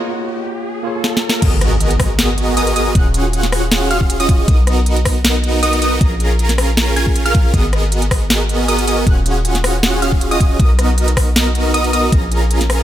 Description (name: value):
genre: future bass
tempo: 157 BPM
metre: 4/4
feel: half-time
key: Eb minor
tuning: A4 = 438 Hz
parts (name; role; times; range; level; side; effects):
- tine electric piano; accompaniment; 0.0-1.4 s; Bb3 to Db5; -24 LUFS; right 1 dB; overdrive, fast stereo tremolo, sidechain pumping, ping-pong delay
- riser and impact; sound effects; 0.0-3.0 s; none; -24 LUFS; equal; none
- trap drum kit; drums; 1.0-12.8 s; crash cymbal, hi-hat, rim click, snare drum; -19 LUFS; equal; overdrive
- wide unison pluck; arpeggios; 1.4-12.8 s; Eb6 to Bb6; -22 LUFS; right 1 dB; cassette tape, sidechain pumping
- supersaw chords; riff; 1.4-12.8 s; Cb4 to Bb5; -18 LUFS; right 1 dB; sidechain pumping, ping-pong delay
- warm 808-style bass; bass; 1.4-12.8 s; Eb1 to B1; -17 LUFS; equal; sidechain pumping
- electronic kick drum; drums; 1.4-12.2 s; none; -14 LUFS; equal; overdrive
room: light reverb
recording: none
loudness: -12 LUFS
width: side -12 dB against mid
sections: 0.0-1.4 A section; 1.4-12.8 B section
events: break 0.0-1.4; build-up 0.0-1.4; riser 0.0-1.4; drum fill 1.0-1.4; drop 1.4-12.8; impact 1.4-3.0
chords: 0.0 Bbm7; 1.4 Abm9; 3.0 Ebm11; 4.5 Bmaj7; 6.0 Bbm7; 7.5 Abm9; 9.1 Ebm11; 10.6 Bmaj7; 12.1 Bbm7